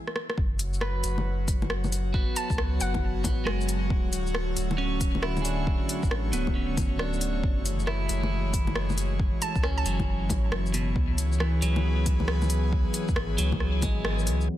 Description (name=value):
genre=future garage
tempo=136 BPM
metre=4/4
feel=swing 64% on 16ths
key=F# minor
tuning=A4 = 439 Hz
part: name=organic electronic drum kit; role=drums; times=0.1-14.5 s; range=bongos, hi-hat, rim click, shaker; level=-32 LUFS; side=left 1 dB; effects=overdrive, low-pass filter on perc, small room ambience, low-pass filter on snare, low-pass filter on hats
part: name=warm sub bass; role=bass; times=0.4-14.5 s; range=D1 to F#2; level=-28 LUFS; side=equal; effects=sidechain pumping
part: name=electronic kick drum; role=drums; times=0.4-13.9 s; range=none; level=-28 LUFS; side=equal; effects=small room ambience
part: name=airy breathy pad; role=sustained chords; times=0.5-14.6 s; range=D3 to C#5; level=-33 LUFS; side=left 2 dB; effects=chorus, sidechain pumping
part: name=clean electric guitar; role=accompaniment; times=0.8-14.6 s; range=B2 to B4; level=-34 LUFS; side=right 3 dB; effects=vintage 12-bit sampler grit, sidechain pumping, ping-pong delay
part: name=hollow square pluck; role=melody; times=2.4-3.2, 9.4-10.1 s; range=F#5 to A5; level=-36 LUFS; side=right 2 dB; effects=chorus, dub echo
room=light reverb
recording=dense, heavily limited modern master, low-pass filter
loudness=-24 LUFS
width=side -13 dB against mid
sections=0.4-14.5 A section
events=stop 0.0-0.4; drum fill 0.0-0.4; band accent 14.1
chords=0.4 F#sus2; 3.9 Dmaj7; 7.4 F#m9; 11.0 C#m7